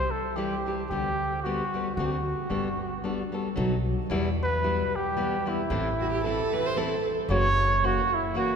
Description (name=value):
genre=mexican folk, mariachi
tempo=113 BPM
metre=3/4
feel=swing 54% on 8ths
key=G major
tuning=A4 = 439 Hz
part: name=mellow trumpet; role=melody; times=0.0-8.6 s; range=E4 to C#5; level=-28 LUFS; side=right 1 dB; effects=none
part: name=nylon-string guitar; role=accompaniment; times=0.4-8.5 s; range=E2 to A4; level=-30 LUFS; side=left 2 dB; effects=none
part: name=upright bass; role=bass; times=0.9-8.0 s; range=F#1 to E2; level=-31 LUFS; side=equal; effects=none
part: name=warm violin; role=second line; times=6.0-7.2 s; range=F#4 to C5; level=-30 LUFS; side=right 3 dB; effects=none
room=wet cathedral reverb, RT60 5.8 s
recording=recorded in a church or concert hall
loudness=-25 LUFS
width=side -6 dB against mid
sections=0.0-4.1 A section; 4.1-8.6 B section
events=none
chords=0.0 C (rootless); 0.9 G/D; 2.0 D7; 2.5 Gadd9; 3.6 B7; 4.1 Em; 5.7 Am; 7.3 F#7